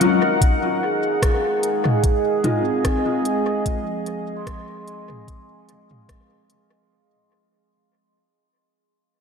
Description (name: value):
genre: ambient dub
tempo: 74 BPM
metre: 4/4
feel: swing 55% on 16ths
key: unclear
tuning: A4 = 441 Hz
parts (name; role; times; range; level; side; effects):
- deep dark ambient pad; sustained chords; 0.0-6.9 s; Eb4 to Gb5; -22 LUFS; equal; chorus, built-in reverb
- vibraphone with soft mallets; arpeggios; 0.0-7.5 s; F3 to C6; -27 LUFS; right 1 dB; diffuse ambient delay
- mellow electric guitar; stabs; 0.0-2.6 s; Gb3 to F4; -24 LUFS; left 4 dB; ensemble chorus, dub echo
- organic electronic drum kit; drums; 0.0-6.7 s; hi-hat, rim click, toms; -27 LUFS; equal; overdrive, dub echo
- electronic kick drum; drums; 0.4-6.3 s; none; -20 LUFS; equal; none
room: wet lush hall reverb, RT60 3.1 s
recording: dreamy mix soaked in reverb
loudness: -18 LUFS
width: side -6 dB against mid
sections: 0.0-6.9 A section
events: fade-out 0.0-6.9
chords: 0.4 Fm7